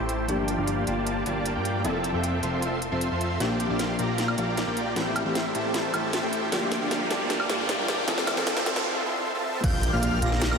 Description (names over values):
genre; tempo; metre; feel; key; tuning
future bass; 154 BPM; 4/4; half-time; G dorian; A4 = 440 Hz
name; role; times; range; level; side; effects
soft round pluck; accompaniment; 0.0-8.9 s; E3 to E5; -34 LUFS; left 2 dB; lush chorus, sidechain pumping, ping-pong delay
shimmering ambient pad; sustained chords; 0.0-10.6 s; F3 to Bb5; -37 LUFS; equal; none
dense compressed supersaw; riff; 0.0-10.6 s; A3 to C6; -28 LUFS; equal; sidechain pumping, low-pass filter, ping-pong delay
fat analog bass; bass; 0.0-10.6 s; F1 to G2; -32 LUFS; equal; sidechain pumping
trap drum kit; drums; 0.1-10.6 s; crash cymbal, hi-hat, snare drum, woodblock; -29 LUFS; equal; small room ambience
riser and impact; sound effects; 5.9-10.6 s; none; -34 LUFS; equal; none
soft octave-layered synth lead; melody; 9.6-10.4 s; F5; -34 LUFS; equal; chorus, sidechain pumping, ping-pong delay
airy dreamy lead; arpeggios; 9.6-10.6 s; F6 to Bb6; -32 LUFS; left 3 dB; chorus, phaser, sidechain pumping
electronic kick drum; drums; 9.6-9.7 s; none; -26 LUFS; equal; small room ambience
room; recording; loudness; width
wet cathedral reverb, RT60 5.9 s; dreamy mix soaked in reverb, high-pass filter; -24 LUFS; side -5 dB against mid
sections
0.0-9.6 A section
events
build-up 0.0-9.6; filter sweep 0.0-9.6; drum fill 3.4-8.9; riser 5.9-8.9; break 8.9-9.6; impact 9.6-10.6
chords
0.3 Gm7; 1.8 Fmaj7; 3.4 Bb6; 5.0 Am7; 6.5 Gm7; 8.1 Fmaj7; 9.6 Bb6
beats
| 0.29 0.68 1.07 1.46 | 1.84 2.23 2.62 3.01 | 3.40 3.79 4.18 4.57 | 4.96 5.35 5.74 6.13 | 6.52 6.91 7.30 7.69 | 8.08 8.47 8.86 9.25 | 9.64 10.03 10.42